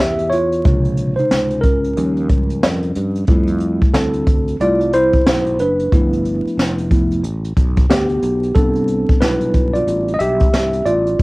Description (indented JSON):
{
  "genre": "hip hop, jazz-hop",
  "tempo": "91 BPM",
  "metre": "4/4",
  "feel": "swing 62% on 16ths",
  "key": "unclear",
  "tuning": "A4 = 439 Hz",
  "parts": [
    { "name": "tine electric piano", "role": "accompaniment", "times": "0.0-11.2 s", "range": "C3 to E5", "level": "-17 LUFS", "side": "equal", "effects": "medium stereo tremolo, cassette tape" },
    { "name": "sustaining fretless electric bass", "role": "bass", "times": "0.0-11.2 s", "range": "F1 to G2", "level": "-22 LUFS", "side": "equal", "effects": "none" },
    { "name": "jazz brush drum kit", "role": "drums", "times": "0.2-11.2 s", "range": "hi-hat, kick drum, snare drum", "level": "-16 LUFS", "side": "equal", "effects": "cassette tape" }
  ],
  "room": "moderate booth ambience, RT60 0.2 s",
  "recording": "home recording on cassette, vinyl crackle",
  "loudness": "-14 LUFS",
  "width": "side -23 dB against mid",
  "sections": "0.0-11.2 A section",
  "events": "tine electric piano solo 0.0-11.2",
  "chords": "0.0 A7(no3) (rootless); 0.6 Bbm7; 2.0 D#9; 3.3 Fmaj7; 5.9 G13; 8.6 Cmaj7"
}